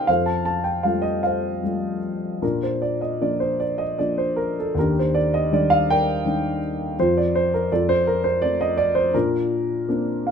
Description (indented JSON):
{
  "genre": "classical, lyrical solo piano",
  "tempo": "74-85 BPM",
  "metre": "3/4",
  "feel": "rubato",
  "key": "Bb major",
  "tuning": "A4 = 440 Hz",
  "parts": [
    { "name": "dark concert grand piano", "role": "solo", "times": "0.0-10.3 s", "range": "Eb2 to A5", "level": "-19 LUFS", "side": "equal", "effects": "none" }
  ],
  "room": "light reverb",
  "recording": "minimal, uncompressed stereo recording",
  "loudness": "-19 LUFS",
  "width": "side -7 dB against mid",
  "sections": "0.0-10.3 A section",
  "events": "grand piano fill 9.9-10.3",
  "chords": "0.1 Fadd9; 2.4 Bb; 4.8 Ebmaj7; 7.0 N.C.; 7.7 F; 9.1 Bbadd9"
}